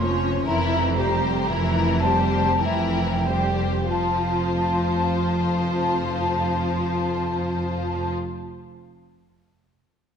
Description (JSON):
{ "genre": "classical", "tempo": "44-63 BPM", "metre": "3/4", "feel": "rubato", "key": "F major", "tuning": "A4 = 440 Hz", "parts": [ { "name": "rich studio violin section", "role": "melody", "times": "0.0-8.1 s", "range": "Bb4 to Db5", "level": "-32 LUFS", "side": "left 6 dB", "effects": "none" }, { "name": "mellow hollow flute section", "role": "second line", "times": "0.0-8.1 s", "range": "G5 to C6", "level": "-27 LUFS", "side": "left 1 dB", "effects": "none" }, { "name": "rich chamber violin section", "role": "second line", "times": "0.0-8.1 s", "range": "Db4 to G4", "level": "-30 LUFS", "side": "left 4 dB", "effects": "none" }, { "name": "rich chamber viola section", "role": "accompaniment", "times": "0.0-8.1 s", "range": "E3 to G3", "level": "-28 LUFS", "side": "equal", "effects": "none" }, { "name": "rich chamber double bass section", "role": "bass", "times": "0.0-8.1 s", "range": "F1", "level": "-28 LUFS", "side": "right 3 dB", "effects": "none" }, { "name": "warm studio cello section", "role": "bass", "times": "0.0-8.1 s", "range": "F2", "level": "-27 LUFS", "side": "right 1 dB", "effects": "none" } ], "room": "moderate scoring stage reverb, RT60 1.9 s", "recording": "dark, warm production", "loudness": "-20 LUFS", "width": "side -7 dB against mid", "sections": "0.0-3.9 A section; 3.9-7.4 B section", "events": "slowing down 0.0-3.9", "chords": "0.5 C7/F; 3.9 F" }